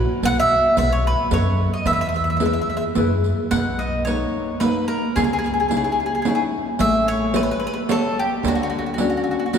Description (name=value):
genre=italian folk, Italian serenade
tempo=110 BPM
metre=3/4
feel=straight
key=E major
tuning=A4 = 440 Hz
part: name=mandolin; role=melody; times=0.0-9.6 s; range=F#4 to F#5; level=-22 LUFS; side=equal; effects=none
part: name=nylon-string guitar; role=accompaniment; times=0.0-9.6 s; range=B2 to D#5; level=-25 LUFS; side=left 3 dB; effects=none
part: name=upright bass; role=bass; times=0.0-9.2 s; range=A1 to F#2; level=-25 LUFS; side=equal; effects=none
part: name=riq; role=percussion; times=0.2-9.6 s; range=none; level=-24 LUFS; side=right 3 dB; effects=none
room=wet church reverb, RT60 3.7 s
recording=recorded in a church or concert hall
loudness=-18 LUFS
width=side -7 dB against mid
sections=0.0-3.5 A section; 3.5-9.6 B section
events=none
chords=0.2 Bsus4; 0.8 B7; 1.9 E; 3.5 Bmaj7; 5.2 C#madd9; 6.8 A7; 8.4 Dmaj7